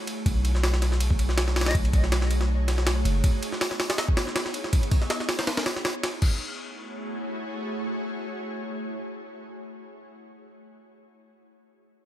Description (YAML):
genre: drum and bass, jungle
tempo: 161 BPM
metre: 4/4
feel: swing 54% on 16ths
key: F# dorian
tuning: A4 = 438 Hz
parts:
  - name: jungle sampler-style drum kit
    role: drums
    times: 0.1-6.3 s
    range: crash cymbal, hi-hat, kick drum, ride cymbal, snare drum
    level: -25 LUFS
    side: equal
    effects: overdrive, small room ambience
  - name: ethereal airy pad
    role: sustained chords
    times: 0.3-10.0 s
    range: A3 to C#5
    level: -33 LUFS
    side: right 1 dB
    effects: ensemble chorus, built-in reverb
  - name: long sustained 808-style bass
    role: bass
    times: 0.3-3.2 s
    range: F#1 to B1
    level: -23 LUFS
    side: equal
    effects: none
  - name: breathy bright jazz flute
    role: melody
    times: 1.7 s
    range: D#5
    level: -35 LUFS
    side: left 2 dB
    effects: dub echo
room: little or no reverb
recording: none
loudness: -23 LUFS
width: side -12 dB against mid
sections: 0.0-6.2 A section; 6.2-9.2 B section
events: drop 0.0-6.2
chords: 0.3 B13; 3.2 C#m7; 6.2 F#m9